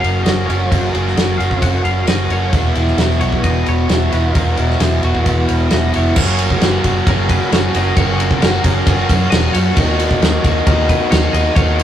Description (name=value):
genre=rock, shoegaze and dream pop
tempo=133 BPM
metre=4/4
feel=straight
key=F# major from 6.2 s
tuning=A4 = 439 Hz
part: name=twangy electric guitar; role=melody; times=0.0-11.8 s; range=F#4 to Gb5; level=-26 LUFS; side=left 2 dB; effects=tremolo, slapback echo
part: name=overdriven electric guitar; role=riff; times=0.0-11.8 s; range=E2 to Gb4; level=-17 LUFS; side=equal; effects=none
part: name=vintage muted fingered electric bass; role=bass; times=0.0-11.8 s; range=E1 to F#2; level=-17 LUFS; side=equal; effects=none
part: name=loose indie drum kit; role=drums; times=0.0-11.8 s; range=crash cymbal, kick drum, ride cymbal, snare drum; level=-17 LUFS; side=equal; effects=none
room=moderate studio reverb, RT60 0.6 s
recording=rough rehearsal-room recording, tube saturation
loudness=-12 LUFS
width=side -10 dB against mid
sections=0.0-6.2 A section; 6.2-11.8 B section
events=none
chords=0.0 Gb; 2.5 Esus2; 6.2 F#; 9.8 D#m7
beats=0.27 | 0.72 1.18 1.63 2.08 | 2.54 2.99 3.44 3.90 | 4.35 4.80 5.26 5.71 | 6.16 6.61 7.06 7.51 | 7.96 8.41 8.87 9.31 | 9.77 10.21 10.66 11.11 | 11.56